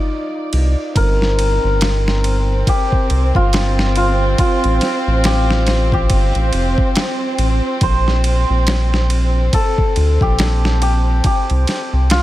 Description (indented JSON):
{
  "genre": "trip hop",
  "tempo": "70 BPM",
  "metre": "4/4",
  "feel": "swing 59% on 16ths",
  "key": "G minor",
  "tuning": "A4 = 440 Hz",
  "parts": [
    { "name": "hammered dulcimer", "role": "melody", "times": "0.0-12.2 s", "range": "Eb4 to C5", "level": "-21 LUFS", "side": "left 1 dB", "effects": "tape echo" },
    { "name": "warm chamber violin section", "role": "sustained chords", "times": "0.0-12.2 s", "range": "C4 to D5", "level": "-23 LUFS", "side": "right 1 dB", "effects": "none" },
    { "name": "round analog bass", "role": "bass", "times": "0.5-12.2 s", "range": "F1 to D2", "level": "-15 LUFS", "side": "equal", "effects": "none" },
    { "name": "dusty soul sampler-style drum kit", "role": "drums", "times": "0.5-12.2 s", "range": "kick drum, ride cymbal, snare drum", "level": "-19 LUFS", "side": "equal", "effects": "none" }
  ],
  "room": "little or no reverb",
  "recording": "none",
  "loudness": "-13 LUFS",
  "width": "side -15 dB against mid",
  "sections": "0.0-12.2 A section",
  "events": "none",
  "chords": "0.0 Cm; 1.0 Gm; 4.4 F/A; 7.8 N.C.; 11.2 C5"
}